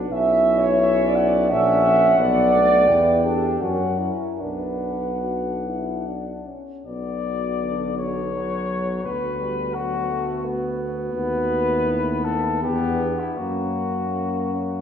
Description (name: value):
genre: classical, hymn-like piece for brass band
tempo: 71-88 BPM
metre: 3/4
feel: rubato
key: B minor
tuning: A4 = 441 Hz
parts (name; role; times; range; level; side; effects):
- dark cornet; melody; 0.0-14.8 s; E4 to G5; -26 LUFS; left 5 dB; none
- clear euphonium; accompaniment; 0.0-14.8 s; A3 to G4; -30 LUFS; left 3 dB; none
- warm trombone; accompaniment; 0.0-14.8 s; D3 to D4; -29 LUFS; right 1 dB; none
- mellow tuba; bass; 0.0-14.8 s; A#1 to F#2; -26 LUFS; left 1 dB; none
- dark French horn section; second line; 0.1-14.8 s; C#4 to E5; -22 LUFS; right 3 dB; none
room: wet concert hall reverb, RT60 1.9 s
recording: recorded in a church or concert hall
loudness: -19 LUFS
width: side -8 dB against mid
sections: 0.0-6.9 A section; 6.9-14.8 B section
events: none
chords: 0.1 F#7/B; 2.2 Bm; 2.9 Em7; 3.6 F#7; 4.4 Bm; 9.0 Bm/D; 11.1 B7/D#; 12.6 Em7; 13.4 F#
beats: | 0.11 0.81 1.51 | 2.19 2.88 3.61 | 4.40 5.24 6.07 | 6.87 7.61 8.34 | 9.05 9.75 10.44 | 11.14 11.87 12.62 | 13.38 14.14